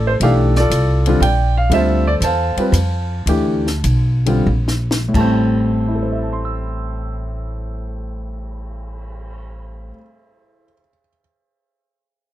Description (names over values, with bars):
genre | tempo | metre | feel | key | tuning
jazz piano trio | 84-120 BPM | 3/4 | swing 69% on 8ths | A minor | A4 = 440 Hz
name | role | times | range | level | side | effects
warm grand piano | melody | 0.0-11.2 s | A2 to E6 | -18 LUFS | equal | none
upright bass | bass | 0.0-9.9 s | A1 to F2 | -18 LUFS | equal | none
compact cocktail drum kit | drums | 0.2-9.3 s | crash cymbal, cymbal swell, hi-hat, kick drum, ride cymbal, snare drum | -27 LUFS | left 2 dB | none
room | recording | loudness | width
little or no reverb | close, detailed microphones | -15 LUFS | side -13 dB against mid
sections
0.0-5.2 A section; 5.2-9.4 B section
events
slowing down 1.7-5.2; drum fill 4.5-5.2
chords
0.2 Bm7b5; 1.2 Bb; 1.7 Dm7; 2.7 F; 3.3 Bm7b5; 4.5 N.C.; 5.2 Am7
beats
| 0.21 0.71 1.21 | 1.71 2.22 2.74 | 3.28 3.85 4.47 | 5.15 5.87 6.58 | 7.30 8.02 8.73